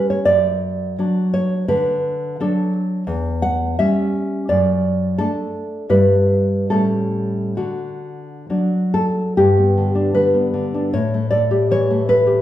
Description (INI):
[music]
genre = romantic piece for solo classical guitar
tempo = 64-89 BPM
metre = 2/4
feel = rubato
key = D major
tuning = A4 = 440 Hz
[part]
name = nylon-string guitar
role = solo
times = 0.0-12.4 s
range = E2 to F#5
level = -16 LUFS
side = equal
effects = none
[sound]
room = wet recital hall reverb, RT60 1.3 s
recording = recorded in a church or concert hall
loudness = -16 LUFS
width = side -12 dB against mid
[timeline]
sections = 0.0-9.4 A section; 9.4-12.4 B section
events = none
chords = 0.3 D/F#; 1.7 D; 3.1 C#dim/E; 4.5 D/F#; 5.9 Em/G; 6.7 A7; 7.6 D; 9.4 G; 10.9 A5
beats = | 0.28 0.99 | 1.68 2.38 | 3.07 3.77 | 4.50 5.19 | 5.92 6.72 | 7.59 8.51 | 9.40 10.17 | 10.95 11.71